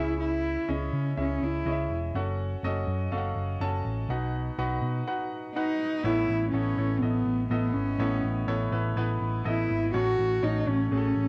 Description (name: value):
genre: pop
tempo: 123 BPM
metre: 4/4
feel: straight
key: unclear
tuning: A4 = 442 Hz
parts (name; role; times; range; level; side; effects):
- dark cello; melody; 0.0-1.9, 5.6-11.3 s; B3 to F#4; -30 LUFS; equal; none
- clear concert grand piano; accompaniment; 0.0-11.3 s; A2 to A5; -35 LUFS; equal; none
- hollow-body short-scale picked electric bass; bass; 0.0-11.3 s; E1 to C#3; -32 LUFS; equal; none
room: light reverb, small room ambience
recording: home recording on cassette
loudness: -28 LUFS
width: mono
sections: 0.0-6.0 A section; 6.0-11.3 B section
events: none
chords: 0.0 C#m; 2.1 F#m; 4.1 B; 6.0 Aadd9; 9.9 F#m